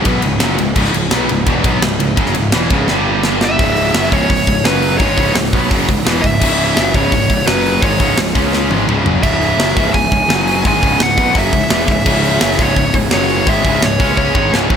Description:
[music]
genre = heavy metal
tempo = 170 BPM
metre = 4/4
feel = straight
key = C# minor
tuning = A4 = 440 Hz
[part]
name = muted studio string section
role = sustained chords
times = 0.0-3.6, 9.2-14.8 s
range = C#3 to F#5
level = -28 LUFS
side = right 1 dB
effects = none
[part]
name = high-gain distorted guitar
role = riff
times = 0.0-14.8 s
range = C#2 to C#4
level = -20 LUFS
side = left 9 dB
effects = distortion, slapback echo
[part]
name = overdriven electric guitar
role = riff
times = 0.0-14.8 s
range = C#2 to C#4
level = -21 LUFS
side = equal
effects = slapback echo
[part]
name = scooped high-gain guitar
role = riff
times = 0.0-14.8 s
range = C#2 to C#4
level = -20 LUFS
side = right 9 dB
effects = distortion, slapback echo
[part]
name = fuzz picked electric bass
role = bass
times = 0.0-14.8 s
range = C#1 to C#2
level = -20 LUFS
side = equal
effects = overdrive
[part]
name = tight metal drum kit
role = drums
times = 0.0-14.8 s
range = crash cymbal, hi-hat, kick drum, ride cymbal, snare drum, splash cymbal, toms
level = -16 LUFS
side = equal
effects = none
[part]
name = high-gain lead guitar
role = melody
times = 3.4-14.5 s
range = B4 to G#5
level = -17 LUFS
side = equal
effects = distortion
[sound]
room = moderate lush hall reverb, RT60 2.1 s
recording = big arena sound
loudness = -11 LUFS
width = side -8 dB against mid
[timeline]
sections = 0.0-3.6 A section; 3.6-14.8 B section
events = drum fill 2.9-3.6, 8.5-9.2, 14.2-14.8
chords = 0.0 C#m; 2.9 G5; 3.6 C#m; 4.6 F#5; 5.0 C#m; 7.5 F#5; 7.8 C#m; 10.3 F#5; 10.6 C#m; 13.1 F#5; 13.5 C#m

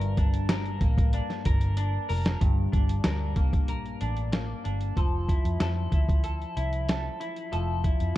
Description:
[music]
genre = indie pop, bedroom pop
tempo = 94 BPM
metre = 4/4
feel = straight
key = F major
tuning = A4 = 439 Hz
[part]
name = clean electric guitar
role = accompaniment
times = 0.0-8.2 s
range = G2 to Bb4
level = -32 LUFS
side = left 2 dB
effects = wide subtle chorus, vibrato effect
[part]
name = vintage muted fingered electric bass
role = bass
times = 0.0-8.1 s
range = F1 to F2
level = -29 LUFS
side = equal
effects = none
[part]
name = lo-fi sampler-style drum kit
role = drums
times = 0.0-8.2 s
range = hi-hat, kick drum, snare drum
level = -26 LUFS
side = equal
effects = none
[sound]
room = digital ambience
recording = dark, warm production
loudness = -24 LUFS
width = side -15 dB against mid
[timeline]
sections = 0.0-2.4 A section; 2.4-5.0 B section; 5.0-8.2 C section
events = drum fill 1.8-2.4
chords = 0.0 Gm; 5.0 Fmaj7

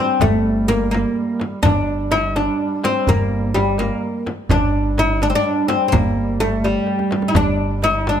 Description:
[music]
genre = Persian modal ensemble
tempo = 84 BPM (dotted quarters)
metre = 6/8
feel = straight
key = G avaz esfahan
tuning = A4 = 440 Hz
[part]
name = oud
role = melody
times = 0.0-8.2 s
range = G3 to E4-50c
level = -18 LUFS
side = equal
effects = none
[part]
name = warm duduk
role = drone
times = 0.0-8.2 s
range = G3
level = -29 LUFS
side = right 2 dB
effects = none
[part]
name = upright bass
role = bass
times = 0.2-8.2 s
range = G1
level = -23 LUFS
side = equal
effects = none
[part]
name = frame drum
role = percussion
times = 0.2-8.2 s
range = none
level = -24 LUFS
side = left 3 dB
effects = none
[part]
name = tombak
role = percussion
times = 0.2-8.2 s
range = none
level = -25 LUFS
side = right 3 dB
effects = none
[sound]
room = light reverb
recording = close, detailed microphones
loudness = -16 LUFS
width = side -9 dB against mid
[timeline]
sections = 0.0-7.4 A section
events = drum fill 6.9-7.4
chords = none

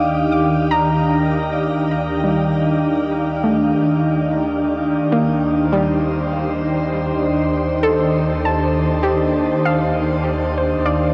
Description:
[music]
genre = ambient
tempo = 75 BPM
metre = 4/4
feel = straight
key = unclear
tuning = A4 = 440 Hz
[part]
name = glassy FM pad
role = sustained chords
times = 0.0-11.1 s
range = Eb3 to F5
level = -20 LUFS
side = equal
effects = ensemble chorus, built-in reverb
[part]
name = soft round pluck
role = arpeggios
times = 0.0-11.1 s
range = G3 to D6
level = -25 LUFS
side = equal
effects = chorus, tape echo
[part]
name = warm studio double bass section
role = bass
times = 0.0-11.1 s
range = Eb2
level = -29 LUFS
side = equal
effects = none
[part]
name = analog drone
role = drone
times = 0.0-11.1 s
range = Eb3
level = -31 LUFS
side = equal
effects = none
[sound]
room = wet shimmer reverb, RT60 8.1 s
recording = none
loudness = -18 LUFS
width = mono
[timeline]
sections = 0.0-11.1 A section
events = fade-in on double bass section 0.0-11.1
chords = 0.0 Cmadd9/Eb

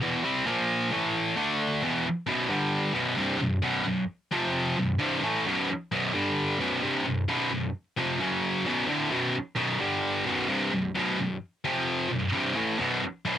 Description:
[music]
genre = metal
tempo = 131 BPM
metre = 4/4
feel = straight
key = B minor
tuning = A4 = 441 Hz
[part]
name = high-gain distorted guitar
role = solo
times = 0.0-13.4 s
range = B1 to D4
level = -25 LUFS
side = equal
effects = distortion, cassette tape
[sound]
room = light reverb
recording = home recording on cassette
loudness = -25 LUFS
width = side -10 dB against mid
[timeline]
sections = 0.0-2.0 A section; 2.0-13.4 B section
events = none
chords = 0.5 A#5; 0.9 A5; 1.4 D5; 1.8 E5; 2.0 B5; 2.5 G5; 3.0 B5; 4.3 F5; 4.8 B5; 6.1 G5; 6.6 B5; 8.2 F#5; 8.7 Bm; 9.8 G5; 10.3 B5; 11.6 F5; 12.1 B5

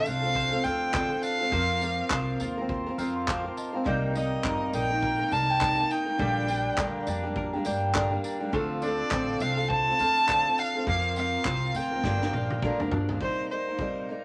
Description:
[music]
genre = acoustic pop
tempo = 103 BPM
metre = 4/4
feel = swing 60% on 16ths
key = G minor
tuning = A4 = 441 Hz
[part]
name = warm violin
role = melody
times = 0.0-14.0 s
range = C5 to A5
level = -30 LUFS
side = equal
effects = none
[part]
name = bright reed electric piano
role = accompaniment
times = 0.0-13.2 s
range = Bb3 to D6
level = -41 LUFS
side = equal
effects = none
[part]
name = picked steel-string acoustic guitar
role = accompaniment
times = 0.0-14.2 s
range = G2 to Bb4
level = -34 LUFS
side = equal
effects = none
[part]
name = bowl-back mandolin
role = arpeggios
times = 0.0-13.8 s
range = G3 to G5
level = -38 LUFS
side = equal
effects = none
[part]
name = upright bass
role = bass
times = 0.1-13.2 s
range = G1 to G2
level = -35 LUFS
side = equal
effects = none
[part]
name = loose indie drum kit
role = drums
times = 0.1-13.9 s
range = handclaps, kick drum, snare drum, tambourine, toms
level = -36 LUFS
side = equal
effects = none
[sound]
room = moderate studio reverb, RT60 0.5 s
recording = vinyl crackle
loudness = -27 LUFS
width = mono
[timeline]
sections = 0.0-13.2 A section; 13.2-14.2 B section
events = drum fill 12.0-13.2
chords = 0.0 Dm7; 1.5 Fsus4; 3.9 Cm7; 6.2 Gm/Bb; 8.5 Dm7; 10.9 Fsus4; 12.0 Gm7; 13.2 Cm7

